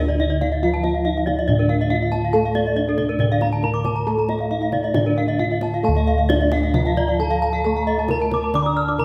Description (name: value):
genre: Balinese gamelan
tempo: 137 BPM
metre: 4/4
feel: uneven beats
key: D pelog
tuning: A4 = 440 Hz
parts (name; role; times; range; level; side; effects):
- gamelan-type bronze metallophone; melody; 0.0-9.0 s; D4 to D5; -27 LUFS; equal; none
- gamelan-type bronze metallophone; accompaniment; 0.0-9.0 s; D3 to D4; -31 LUFS; equal; none
- gamelan-type bronze metallophone; arpeggios; 0.0-9.0 s; D5 to Eb6+35c; -28 LUFS; equal; none
- gamelan-type bossed gongs; bass; 0.0-9.0 s; D2 to A4; -24 LUFS; equal; none
- gamelan-type bronze metallophone; arpeggios; 0.1-8.9 s; A4 to F6; -29 LUFS; equal; none
- kendang; percussion; 0.2-9.0 s; none; -31 LUFS; equal; none
- mellow hollow bansuri; second line; 6.7-9.0 s; F5 to D6; -30 LUFS; equal; none
room: moderate scoring stage reverb, RT60 1.6 s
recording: none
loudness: -20 LUFS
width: mono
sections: 0.0-5.8 A section; 5.8-9.0 B section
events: none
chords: none